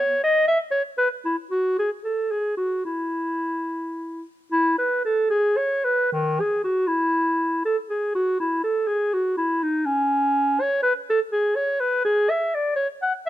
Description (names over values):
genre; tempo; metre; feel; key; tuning
classical, baroque-style fantasia for unaccompanied clarinet; 70-84 BPM (dotted quarters); 6/8; rubato; E major; A4 = 440 Hz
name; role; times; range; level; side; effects
dark clarinet; solo; 0.0-13.3 s; D#3 to F#5; -20 LUFS; equal; none
room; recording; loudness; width
light reverb; close, detailed microphones; -20 LUFS; side -13 dB against mid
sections
0.0-4.5 A section; 4.5-13.3 B section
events
none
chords
none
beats
0.46 | 1.22 2.01 | 2.83 3.68 | 4.52 5.30 | 6.11 6.88 | 7.64 8.38 | 9.12 9.87 | 10.60 11.32 | 12.05 12.78